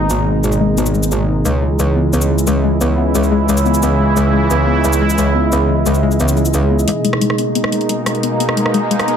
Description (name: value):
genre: dark technical drum and bass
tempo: 177 BPM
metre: 4/4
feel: straight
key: G# minor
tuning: A4 = 440 Hz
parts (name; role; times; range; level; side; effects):
- sweeping resonant pad; sustained chords; 0.0-9.2 s; B2 to E4; -18 LUFS; right 2 dB; chorus
- soft round pluck; arpeggios; 0.0-9.2 s; G#3 to G#4; -19 LUFS; left 6 dB; chorus, vintage 12-bit sampler grit, diffuse ambient delay
- metallic wobble bass; bass; 0.0-6.9 s; G#1 to C#2; -16 LUFS; equal; chorus, tube saturation
- warbly tape-like pad; texture; 0.0-9.2 s; C#4 to A#5; -24 LUFS; right 1 dB; chorus, built-in reverb
- dubstep drum kit; drums; 0.1-9.1 s; cabasa, hi-hat, rim click; -23 LUFS; left 1 dB; none
- riser; sound effects; 7.6-9.2 s; none; -39 LUFS; equal; none
room: moderate plate reverb, RT60 1.2 s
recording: dreamy mix soaked in reverb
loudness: -12 LUFS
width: side -8 dB against mid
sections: 0.0-6.9 A section; 6.9-9.2 B section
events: filter sweep on analog synth pad 0.0-6.9; filter sweep on synth pluck 0.0-6.9, 6.9-9.2; build-up 6.9-9.2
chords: 0.0 G#madd9; 1.5 C#m; 6.9 G#madd9